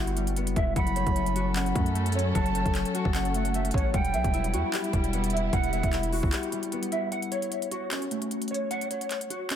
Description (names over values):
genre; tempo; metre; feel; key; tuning
hip hop, trap; 151 BPM; 4/4; half-time; F# phrygian; A4 = 440 Hz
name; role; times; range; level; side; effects
concert harp; accompaniment; 0.0-9.6 s; F#3 to F#5; -32 LUFS; left 7 dB; low-pass filter
mellow electric guitar; arpeggios; 0.0-9.6 s; G3 to F#5; -32 LUFS; right 1 dB; ensemble chorus, low-pass filter, ping-pong delay
hard-hitting 808-style bass; bass; 0.0-6.3 s; E1 to F#2; -30 LUFS; equal; none
trap drum kit; drums; 0.1-9.6 s; handclaps, hi-hat, kick drum; -30 LUFS; equal; none
silver concert flute; second line; 0.8-5.9 s; E5 to B5; -35 LUFS; right 5 dB; ping-pong delay
dark symphonic string section; sustained chords; 0.8-7.1 s; F#3 to A4; -36 LUFS; right 1 dB; none
room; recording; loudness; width
light reverb, small room ambience; dense, heavily limited modern master; -25 LUFS; side -9 dB against mid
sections
0.0-7.1 A section; 7.1-9.6 B section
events
break 6.3-7.1, 7.1-9.6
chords
0.0 Emadd9; 0.8 F#m; 3.9 Emadd9; 7.1 F#m